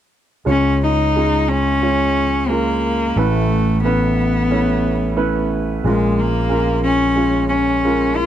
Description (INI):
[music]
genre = acoustic folk-pop ballad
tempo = 90 BPM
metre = 4/4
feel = straight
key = unclear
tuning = A4 = 438 Hz
[part]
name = warm concert grand piano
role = accompaniment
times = 0.4-8.3 s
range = A1 to Db5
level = -20 LUFS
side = right 3 dB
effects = none
[part]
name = rich cello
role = melody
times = 0.5-8.3 s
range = Ab3 to F4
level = -18 LUFS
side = left 2 dB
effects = none
[part]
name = fingered electric bass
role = bass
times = 0.5-8.3 s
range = A1 to Db2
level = -21 LUFS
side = equal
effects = none
[sound]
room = little or no reverb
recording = close, detailed microphones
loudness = -15 LUFS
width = side -10 dB against mid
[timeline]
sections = 0.5-8.3 A section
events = none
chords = 0.5 Db; 3.2 Aadd9; 5.8 Bbm7